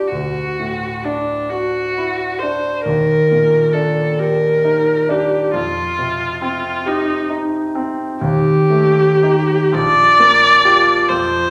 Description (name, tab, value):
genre	classical, impressionist duo for viola and grand piano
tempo	44 BPM (dotted quarters)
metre	6/8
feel	rubato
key	Bb major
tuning	A4 = 440 Hz
part	rich viola	melody	0.0-11.5 s	D4 to D5	-17 LUFS	equal	none
part	clear concert grand piano	accompaniment	0.0-11.5 s	Bb1 to G4	-21 LUFS	equal	none
room	wet recital hall reverb, RT60 1.3 s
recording	none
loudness	-16 LUFS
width	mono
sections	0.0-11.5 A section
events	none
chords	0.1 Dadd9; 2.9 Ebmaj7; 5.5 Fsus2; 8.2 Eb; 9.7 Bb6